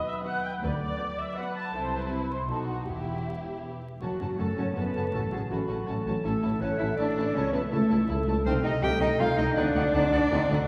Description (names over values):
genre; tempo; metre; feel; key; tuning
cinematic, playful, whimsical film cue; 161 BPM; 3/4; straight; E minor, F# minor from 4.0 s; A4 = 440 Hz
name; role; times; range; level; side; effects
muted studio violin section; melody; 0.0-10.6 s; E4 to A5; -41 LUFS; equal; none
large flute ensemble; second line; 0.0-10.4 s; F#4 to A6; -38 LUFS; equal; none
muted studio violin section; second line; 0.0-10.6 s; B3 to G4; -42 LUFS; equal; none
muted studio viola section; accompaniment; 0.0-10.6 s; A3 to D5; -42 LUFS; equal; none
concert harp; arpeggios; 0.0-10.7 s; F#2 to F#5; -38 LUFS; equal; none
muted studio cello section; bass; 0.6-10.7 s; D2 to G4; -34 LUFS; equal; none
muted studio double bass section; bass; 0.6-10.6 s; E1 to F#2; -36 LUFS; equal; none
clear clarinet; second line; 4.0-10.7 s; F#4 to G5; -36 LUFS; equal; none
mellow tuba; bass; 4.0-10.6 s; F#1 to D2; -36 LUFS; equal; none
mellow cor anglais; second line; 4.4-10.7 s; B4 to A5; -41 LUFS; equal; none
warm French horn section; sustained chords; 4.4-10.4 s; A3 to E4; -40 LUFS; equal; none
room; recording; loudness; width
wet scoring stage reverb, RT60 1.9 s; heard from further back in the room, vinyl crackle; -28 LUFS; mono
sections
0.0-4.0 A section; 4.0-10.7 B section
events
none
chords
0.0 B/D#; 0.6 Bm/D; 1.7 C; 2.5 B7; 2.9 Em; 4.0 F#m; 5.1 F#m/A; 6.2 A; 7.4 A/C#; 8.5 Am7b5/C; 9.6 D7b9